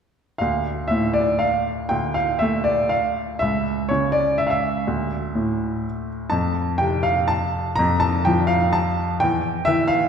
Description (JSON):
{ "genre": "classical, piano waltz", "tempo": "123 BPM", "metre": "3/4", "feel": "uneven beats, rubato", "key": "D minor", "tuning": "A4 = 440 Hz", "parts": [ { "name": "bright baby grand piano", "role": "solo", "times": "0.4-10.1 s", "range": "C#2 to Bb5", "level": "-19 LUFS", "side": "equal", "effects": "none" } ], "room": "wet scoring stage reverb, RT60 2.1 s", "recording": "heard from further back in the room", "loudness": "-19 LUFS", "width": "side -7 dB against mid", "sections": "0.4-10.1 A section", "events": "none", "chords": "0.4 Dm; 3.4 N.C.; 4.9 D5; 6.3 F; 9.2 N.C." }